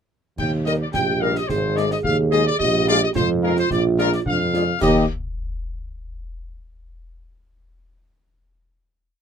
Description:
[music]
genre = military-style march for wind band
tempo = 108 BPM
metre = 2/4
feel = straight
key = Eb major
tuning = A4 = 440 Hz
[part]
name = bright trumpet section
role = melody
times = 0.4-5.0 s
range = Bb4 to G5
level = -23 LUFS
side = left 2 dB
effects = none
[part]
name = clear tuba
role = bass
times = 0.4-5.0 s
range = Ab1 to F2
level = -22 LUFS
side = right 1 dB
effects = none
[part]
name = clash cymbals, concert bass drum and concert snare drum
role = drums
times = 0.4-5.1 s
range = none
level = -30 LUFS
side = left 1 dB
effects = none
[part]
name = clear woodwind section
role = second line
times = 0.7-5.0 s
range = G4 to F5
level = -26 LUFS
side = left 1 dB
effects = none
[part]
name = mellow French horn section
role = accompaniment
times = 0.7-5.0 s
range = G3 to Bb4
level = -22 LUFS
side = left 4 dB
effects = none
[part]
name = dark euphonium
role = second line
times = 0.9-4.4 s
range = D4 to Ab4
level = -23 LUFS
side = right 6 dB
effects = none
[sound]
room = moderate booth ambience, RT60 0.3 s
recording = dark, warm production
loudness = -17 LUFS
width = side -7 dB against mid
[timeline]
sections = 0.4-4.8 A section; 4.8-5.9 final chord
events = none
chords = 0.4 Eb; 1.5 Ab5; 2.6 Bb7sus4; 3.7 Bb7; 4.8 Eb

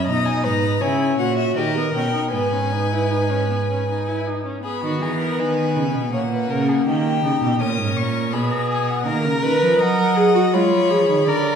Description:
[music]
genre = classical, baroque-style fugue for string quartet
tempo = 81 BPM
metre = 3/4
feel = straight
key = G# minor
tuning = A4 = 438 Hz
[part]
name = rich violin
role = melody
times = 0.0-11.6 s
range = D#5 to D#6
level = -26 LUFS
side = left 6 dB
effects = none
[part]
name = warm violin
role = second line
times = 0.0-11.6 s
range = F#4 to D#5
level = -25 LUFS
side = left 2 dB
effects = none
[part]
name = warm viola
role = accompaniment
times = 0.0-11.6 s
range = A#3 to B4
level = -22 LUFS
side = right 1 dB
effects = none
[part]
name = clear cello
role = bass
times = 0.0-11.6 s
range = G#2 to Ab3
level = -22 LUFS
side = right 2 dB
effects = none
[sound]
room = wet recital hall reverb, RT60 1.4 s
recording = heard from further back in the room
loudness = -17 LUFS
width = side -7 dB against mid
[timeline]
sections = 0.0-4.6 A section; 4.6-11.6 B section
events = none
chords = 0.1 G#m/B; 0.8 A#dim/C#; 1.6 D#7; 2.3 G#m; 6.1 G#m11/A#; 6.9 D#7; 8.3 G#m/B; 9.1 D#m; 10.5 Fm7b5

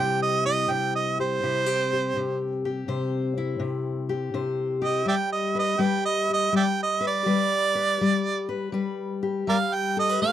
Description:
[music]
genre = acoustic country blues, solo or duo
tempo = 82 BPM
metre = 4/4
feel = swing 66% on 8ths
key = C major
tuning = A4 = 439 Hz
[part]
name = warm harmonica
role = melody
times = 0.0-10.3 s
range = Bb4 to G5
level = -24 LUFS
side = right 5 dB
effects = none
[part]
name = fingerpicked steel-string acoustic guitar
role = accompaniment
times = 0.0-10.3 s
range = C3 to C5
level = -26 LUFS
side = left 4 dB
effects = none
[sound]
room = little or no reverb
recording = dry, close 1970s-style studio recording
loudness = -23 LUFS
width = side -11 dB against mid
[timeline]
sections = 0.0-10.3 A section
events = harmonica solo 0.0-10.3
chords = 0.0 C; 5.1 G

